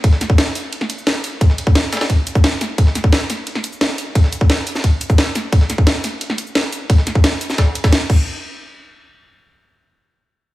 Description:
drum and bass; 175 BPM; 4/4; straight
breakbeat sampler-style drum kit; drums; 0.0-8.1 s; hi-hat, ride cymbal, snare drum; -27 LUFS; equal; high-pass filter on snare, small room reverb, high-pass filter on cymbals, high-pass filter on hats
drum and bass drum kit; drums; 0.0-8.2 s; crash cymbal, hi-hat, shaker, snare drum; -20 LUFS; equal; overdrive, small room reverb
electronic kick drum; drums; 0.0-8.2 s; -12 LUFS; equal; overdrive, small room reverb
light reverb; heavily compressed radio sound, multiband compression, small room ambience; -14 LUFS; side -17 dB against mid
0.0-8.3 A section; 8.3-10.5 B section
drop 0.0-8.3

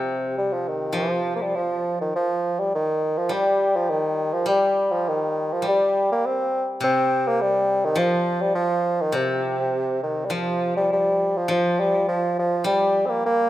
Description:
chinese traditional, Chinese chamber ensemble; 103 BPM; 2/4; straight; A4 = 441 Hz
warm bassoon; melody; 0.0-13.5 s; C3 to C4; -21 LUFS; equal
steel-string zither; accompaniment; 0.0-13.5 s; C3 to G3; -27 LUFS; left 1 dB
moderate recital hall reverb, RT60 1.7 s; -20 LUFS; side -14 dB against mid
0.9-10.3 A section; 10.3-13.5 B section

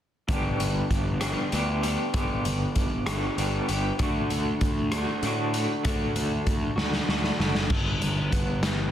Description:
quiet-loud alternative rock; 65 BPM (dotted quarters); 6/8; straight; G major; A4 = 440 Hz
electric guitar through a small old amp; arpeggios; 0.3-8.9 s; G2 to G4; -28 LUFS; equal; tremolo, plate reverb
fuzz picked electric bass; bass; 0.3-8.9 s; F#1 to A2; -30 LUFS; equal; overdrive
raw garage drum kit; drums; 0.3-8.8 s; crash cymbal, hi-hat, kick drum, rim click, snare drum; -28 LUFS; equal
light reverb, studio reverb; dense, heavily limited modern master; -24 LUFS; side -10 dB against mid
0.3-7.7 A section; 7.7-8.9 B section
drum fill 6.8-7.7
0.3 G; 4.0 D; 7.7 G

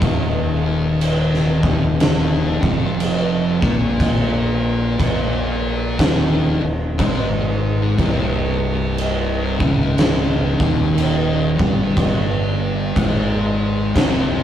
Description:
stoner and doom metal; 60 BPM; 4/4; swing 62% on 8ths; A4 = 440 Hz
thick fuzz guitar; riff; 0.0-14.4 s; C2 to Bb3; -22 LUFS; left 5 dB; distortion
thick fuzz guitar; riff; 0.0-14.4 s; C2 to Bb3; -23 LUFS; right 5 dB; distortion
growling fingered electric bass; bass; 0.0-14.4 s; C1 to Bb1; -24 LUFS; equal; overdrive
oversized low-tuned drum kit; drums; 0.0-14.3 s; crash cymbal, kick drum, snare drum; -19 LUFS; equal
light reverb; rough rehearsal-room recording, tube saturation; -16 LUFS; side -10 dB against mid
0.0-14.4 A section
0.0 Eb5; 8.0 Cm

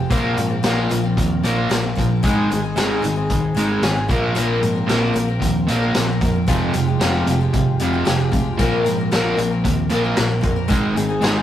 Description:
folk rock and heartland rock; 113 BPM; 4/4; straight; A4 = 440 Hz
picked twelve-string acoustic guitar; accompaniment; 0.0-11.4 s; F2 to Bb4; -23 LUFS; left 3 dB
tonewheel organ; sustained chords; 0.0-11.4 s; Ab3 to Bb4; -34 LUFS; right 1 dB
overdriven semi-hollow guitar; riff; 0.0-11.4 s; F2 to Bb3; -20 LUFS; right 1 dB
hollow-body short-scale fingered electric bass; bass; 0.0-11.4 s; F1 to Ab2; -25 LUFS; equal
vintage drum kit; drums; 0.1-11.4 s; hi-hat, kick drum, snare drum; -22 LUFS; equal
moderate stone room reverb, RT60 1.3 s; rough rehearsal-room recording, tube saturation; -16 LUFS; side -11 dB against mid
0.0-11.4 A section
0.1 Bbsus2; 2.2 Ab; 4.1 Bbsus2; 6.5 Fmadd9; 8.6 Bbsus2; 10.7 Ab

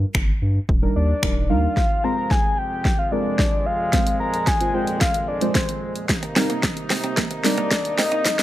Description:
dance-pop; 111 BPM; 4/4; straight; F dorian; A4 = 438 Hz
deep mellow chord stab; accompaniment; 0.0-8.4 s; G3 to C5; -26 LUFS; right 1 dB; chorus, sidechain pumping
saturated sub bass; bass; 0.0-1.7 s; Eb1 to G2; -21 LUFS; equal; sidechain pumping
deep house drum kit; drums; 0.1-8.4 s; finger snaps, hi-hat, kick drum, shaker, snare drum; -21 LUFS; equal
soft octave-layered synth lead; melody; 1.0-8.4 s; C5 to Bb5; -24 LUFS; left 2 dB; chorus, tape echo
mellow brass ensemble; sustained chords; 1.8-8.4 s; F2 to Eb4; -30 LUFS; right 1 dB; sidechain pumping
direct-recorded clean electric guitar; riff; 6.2-8.4 s; Bb3 to Eb4; -28 LUFS; right 5 dB; lush chorus
digital ambience; high-pass filter; -18 LUFS; side -14 dB against mid
0.0-1.8 A section; 1.8-8.4 B section
build-up 1.8-8.4; drum fill 1.8-8.4; filter sweep 1.8-8.4
0.0 Gm7; 0.7 Ebmaj7; 1.8 Fm; 6.1 Cm7

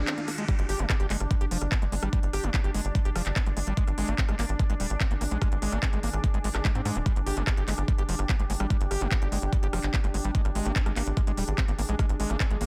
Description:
psychedelic trance; 146 BPM; 4/4; straight; A4 = 441 Hz
evolving wavetable pad; sustained chords; 0.0-12.7 s; D4; -41 LUFS; equal; chorus, built-in reverb, sidechain pumping
tight sequencer bass; bass; 0.0-12.7 s; Eb1 to Ab2; -32 LUFS; equal
riser; sound effects; 0.0-0.5 s; -42 LUFS; equal
deep dark ambient pad; texture; 0.0-12.7 s; Eb3 to Ab5; -43 LUFS; equal; chorus, built-in reverb, sidechain pumping
screaming distorted acid line; riff; 0.1-12.7 s; F3 to G4; -37 LUFS; equal; distortion, chorus, sidechain pumping, digital delay
techno drum kit; drums; 0.1-12.7 s; handclaps, hi-hat, rim click; -36 LUFS; equal; studio reverb
electronic kick drum; drums; 0.5-12.5 s; -28 LUFS; equal; overdrive, studio reverb
digital ambience; dense, heavily limited modern master; -27 LUFS; mono
0.5-12.7 A section
riser 0.0-0.5; break 0.1-0.5; drop 0.5-12.7
0.5 G5; 3.8 Ab5; 7.1 G5; 10.3 Ab5

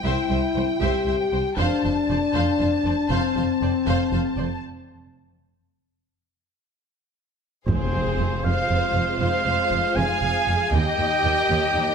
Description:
cinematic, epic orchestral film score; 79 BPM (dotted quarters); 12/8; straight; F minor from 7.7 s; A4 = 440 Hz
warm symphonic violin section; melody; 0.0-11.9 s; Ab4 to A5; -29 LUFS; left 3 dB
warm symphonic violin section; second line; 0.0-11.9 s; C5 to Ab5; -31 LUFS; left 1 dB
mellow French horn section; sustained chords; 0.0-11.9 s; G3 to G4; -26 LUFS; left 5 dB
rich symphonic cello section; bass; 0.0-11.8 s; C2 to F2; -29 LUFS; right 2 dB
rich symphonic double bass section; bass; 0.0-11.8 s; F1 to Eb2; -28 LUFS; right 3 dB
rich symphonic viola section; accompaniment; 0.1-11.9 s; C4 to C5; -31 LUFS; right 1 dB
warm symphonic string section; sustained chords; 7.7-11.9 s; C4 to F5; -33 LUFS; equal
clear trumpet; stabs; 7.7-11.9 s; C5 to Ab5; -25 LUFS; right 2 dB
timpani; percussion; 7.7-8.4 s; F2; -28 LUFS; left 1 dB
impact; sound effects; 7.7-10.7 s; -34 LUFS; equal
moderate recital hall reverb, RT60 1.4 s; -20 LUFS; side -6 dB against mid
0.0-7.7 A section; 7.7-11.9 A section
break 4.6-7.7; impact 7.7-10.7
0.0 C; 1.6 F6; 4.6 N.C.; 7.7 Fm; 10.7 Eb

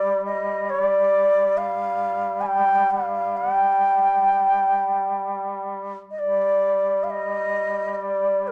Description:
caucasian folk, Caucasian lament; 62-69 BPM; 3/4; rubato; A4 = 440 Hz
bansuri; melody; 0.0-8.5 s; Bb4 to Ab5; -22 LUFS; equal
warm duduk; drone; 0.0-8.5 s; G3; -31 LUFS; equal
wet studio reverb, RT60 0.8 s; -22 LUFS; mono
0.0-6.2 A section; 6.2-8.5 B section

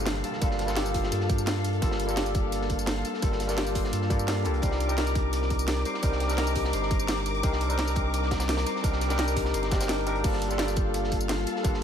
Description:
liquid drum and bass; 171 BPM; 4/4; straight; G minor; A4 = 440 Hz
barky tine electric piano; accompaniment; 0.0-11.8 s; G3 to Bb4; -30 LUFS; equal; overdrive, lush chorus, analog delay
dark symphonic string section; sustained chords; 0.0-11.8 s; A4 to D6; -34 LUFS; left 2 dB
Celtic harp; arpeggios; 0.0-11.8 s; F4 to C5; -36 LUFS; left 5 dB; tape echo
warm sub bass; bass; 0.0-11.8 s; G1 to G2; -30 LUFS; equal
downlifter; sound effects; 0.0-1.8 s; -41 LUFS; right 1 dB
crunchy breakbeat drum kit; drums; 0.1-11.8 s; hi-hat, snare drum; -38 LUFS; right 1 dB; high-pass filter on hats, high-pass filter on snare, high-pass filter on room
garage drum kit; drums; 0.1-11.7 s; crash cymbal, hi-hat, snare drum, tambourine; -34 LUFS; right 1 dB
electronic kick drum; drums; 0.4-11.7 s; -28 LUFS; equal
light reverb, small room ambience; -24 LUFS; side -8 dB against mid
0.0-11.8 A section
0.0 Gm9; 4.6 Cm9; 10.2 Gm9

